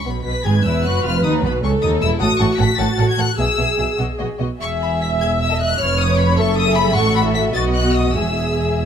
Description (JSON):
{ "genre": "quick classical-period movement for string orchestra", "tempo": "101 BPM (dotted quarters)", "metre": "6/8", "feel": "uneven beats, rubato", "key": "E major", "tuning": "A4 = 440 Hz", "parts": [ { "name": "rich studio violin section", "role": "melody", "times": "0.0-8.8 s", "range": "B5 to B6", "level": "-22 LUFS", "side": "left 6 dB", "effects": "none" }, { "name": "rich studio double bass section", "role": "bass", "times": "0.0-8.9 s", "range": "E1 to D#2", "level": "-22 LUFS", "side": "right 2 dB", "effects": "none" }, { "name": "warm studio cello section", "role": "bass", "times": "0.0-8.9 s", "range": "C#2 to B2", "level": "-21 LUFS", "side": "right 2 dB", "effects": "none" }, { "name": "warm studio violin section", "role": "second line", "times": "0.1-8.9 s", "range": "B3 to F#5", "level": "-24 LUFS", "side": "left 5 dB", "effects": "none" }, { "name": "rich studio viola section", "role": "accompaniment", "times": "0.4-8.9 s", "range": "F#4 to E5", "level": "-22 LUFS", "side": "equal", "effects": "none" } ], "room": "light reverb", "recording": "close, detailed microphones", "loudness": "-15 LUFS", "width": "side -8 dB against mid", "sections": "0.0-8.9 A section", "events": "none", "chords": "0.0 E; 1.0 B; 1.6 C#madd9 (rootless); 2.2 F#m/A; 3.4 E; 5.8 C#7/E#; 6.4 F#m7; 7.0 F#m/A; 7.5 B; 8.2 E" }